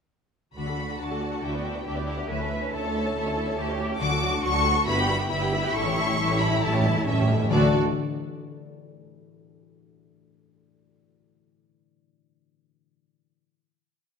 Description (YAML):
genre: classical, dramatic, fast romantic movement for symphony orchestra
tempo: 137 BPM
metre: 4/4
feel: straight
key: D major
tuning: A4 = 439 Hz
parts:
  - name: warm symphonic violin section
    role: melody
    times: 0.6-7.8 s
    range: D5 to D6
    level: -29 LUFS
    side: left 3 dB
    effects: none
  - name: warm studio violin section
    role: second line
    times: 0.6-7.8 s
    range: F#4 to A5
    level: -31 LUFS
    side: left 1 dB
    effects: none
  - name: warm studio viola section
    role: accompaniment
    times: 0.6-7.8 s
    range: F#3 to A4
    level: -32 LUFS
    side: right 2 dB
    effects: none
  - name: concert harp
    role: arpeggios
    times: 0.6-9.3 s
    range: G2 to B5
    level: -31 LUFS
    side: left 8 dB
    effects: none
  - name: rich symphonic cello section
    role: bass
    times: 0.6-7.8 s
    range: D2 to B4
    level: -31 LUFS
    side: right 2 dB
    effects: none
  - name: rich symphonic double bass section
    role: bass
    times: 0.6-7.8 s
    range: G1 to D2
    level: -30 LUFS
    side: right 4 dB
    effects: none
  - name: timpani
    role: percussion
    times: 2.3-7.7 s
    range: A2 to D3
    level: -30 LUFS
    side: equal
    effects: none
room: wet recital hall reverb, RT60 1.6 s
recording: none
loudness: -22 LUFS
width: side -6 dB against mid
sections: 0.6-7.5 A section; 7.5-9.3 final chord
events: timpani fill 5.7-7.5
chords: 0.6 D; 1.4 Em7/D; 2.3 A/D; 4.0 D; 4.9 Em/G; 5.7 A7; 7.5 D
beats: | 0.57 1.01 1.44 1.87 | 2.30 2.74 3.16 3.59 | 4.01 4.44 4.87 5.30 | 5.74 6.18 6.62 7.07 | 7.53 7.97 8.42 8.87